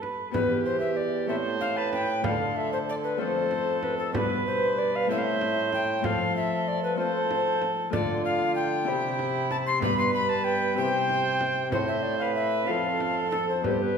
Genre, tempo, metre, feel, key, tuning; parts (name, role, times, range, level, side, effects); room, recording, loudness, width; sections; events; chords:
classical, renaissance-style consort dance; 63 BPM (dotted quarters); 6/8; straight; A4 = 440 Hz
warm viola; second line; 0.0-14.0 s; E4 to C5; -30 LUFS; right 5 dB
Celtic harp; accompaniment; 0.0-14.0 s; E2 to A4; -32 LUFS; left 3 dB
frame drum; percussion; 0.0-13.9 s; -36 LUFS; right 3 dB
tenor recorder; melody; 0.3-14.0 s; A4 to C6; -28 LUFS; left 5 dB
dark bassoon; bass; 0.3-14.0 s; E2 to F3; -31 LUFS; right 3 dB
wet recital hall reverb, RT60 1.4 s; recorded in a church or concert hall; -24 LUFS; side -6 dB against mid
0.3-14.0 A section
0.3 Em; 1.3 Am; 2.2 Dm; 3.2 F; 4.1 G; 5.1 Am; 6.0 F; 7.9 Dm; 8.9 C; 9.8 G; 10.8 C; 11.7 Am; 12.7 F